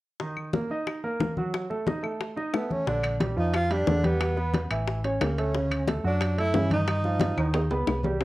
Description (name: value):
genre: Afro-Cuban jazz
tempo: 180 BPM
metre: 4/4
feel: straight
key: unclear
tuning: A4 = 436 Hz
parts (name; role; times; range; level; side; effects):
- clear grand piano; accompaniment; 0.2-8.2 s; C3 to Eb5; -30 LUFS; right 2 dB; cassette tape
- bongos; percussion; 0.2-8.2 s; none; -31 LUFS; left 5 dB; none
- congas; percussion; 0.2-8.2 s; none; -32 LUFS; left 1 dB; none
- claves; percussion; 0.4-8.0 s; none; -38 LUFS; left 4 dB; none
- breathy tenor saxophone; melody; 2.6-7.7 s; Bb3 to F4; -30 LUFS; right 1 dB; cassette tape
- hollow-body short-scale fingered electric bass; bass; 2.9-8.2 s; A1 to G2; -28 LUFS; equal; none
- timbales; percussion; 3.0-8.1 s; none; -34 LUFS; right 2 dB; none
room: moderate studio reverb, RT60 0.6 s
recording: home recording on cassette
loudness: -24 LUFS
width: side -17 dB against mid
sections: 0.2-2.9 A section; 2.9-8.2 B section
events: drum fill 7.4-8.2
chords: 0.2 Ebm; 1.5 Gbm6; 2.9 Bb6; 4.2 Em; 4.9 A; 5.5 Dmaj7; 6.9 Gaug7